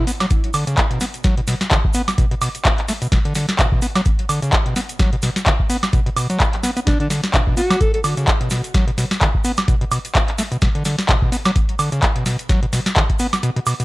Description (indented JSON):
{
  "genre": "acid house",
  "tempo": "128 BPM",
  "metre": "4/4",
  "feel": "swing 57% on 16ths",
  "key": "B minor",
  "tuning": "A4 = 440 Hz",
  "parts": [
    { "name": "mellow alto saxophone", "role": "melody", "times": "0.0, 6.9-8.0 s", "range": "D4 to A4", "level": "-25 LUFS", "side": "equal", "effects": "tape echo" },
    { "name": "overdriven acid bass", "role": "riff", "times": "0.0-13.8 s", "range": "B2 to B3", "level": "-22 LUFS", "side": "equal", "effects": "tape echo" },
    { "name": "booming analog drum machine", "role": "drums", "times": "0.1-13.8 s", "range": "handclaps, hi-hat, snare drum, woodblock", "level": "-20 LUFS", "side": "equal", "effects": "none" },
    { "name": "egg shaker", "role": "percussion", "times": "0.1-13.8 s", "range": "none", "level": "-33 LUFS", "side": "right 3 dB", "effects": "none" },
    { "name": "electronic kick drum", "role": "drums", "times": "0.3-13.2 s", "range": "none", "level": "-18 LUFS", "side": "equal", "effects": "none" }
  ],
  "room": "little or no reverb",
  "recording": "dry, gritty hardware recording, cassette tape",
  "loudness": "-16 LUFS",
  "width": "side -20 dB against mid",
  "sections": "0.0-13.8 A section",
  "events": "break 13.4-13.8",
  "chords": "0.0 Bm"
}